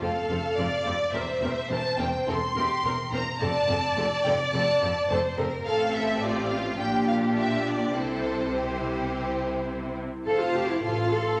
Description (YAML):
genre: quick classical-period movement for string orchestra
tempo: 106 BPM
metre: 4/4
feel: straight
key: F major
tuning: A4 = 439 Hz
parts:
  - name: clear symphonic violin section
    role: melody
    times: 0.0-11.4 s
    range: G4 to C6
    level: -33 LUFS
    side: equal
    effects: none
  - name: rich symphonic violin section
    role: second line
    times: 0.0-11.4 s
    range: F4 to F5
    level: -31 LUFS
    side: equal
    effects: none
  - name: rich symphonic viola section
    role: accompaniment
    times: 0.0-11.4 s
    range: C4 to Bb4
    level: -34 LUFS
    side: equal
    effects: none
  - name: rich symphonic cello section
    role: bass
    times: 0.0-10.0 s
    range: E2 to C3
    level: -34 LUFS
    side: equal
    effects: none
  - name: rich symphonic double bass section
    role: bass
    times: 0.0-11.4 s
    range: E1 to C2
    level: -37 LUFS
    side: equal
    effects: none
room: wet recital hall reverb, RT60 1.4 s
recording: none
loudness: -27 LUFS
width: mono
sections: 0.0-10.3 A section; 10.3-11.4 B section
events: none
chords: 0.0 F; 1.1 C7/E; 3.4 F; 5.7 F/A; 6.8 Gm7/Bb; 7.9 C; 10.3 F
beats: 0.02 0.58 | 1.14 1.71 2.28 2.85 | 3.41 3.97 4.54 5.10 | 5.66 6.23 6.80 7.37 | 7.95 8.53 9.11 9.69 | 10.27 10.84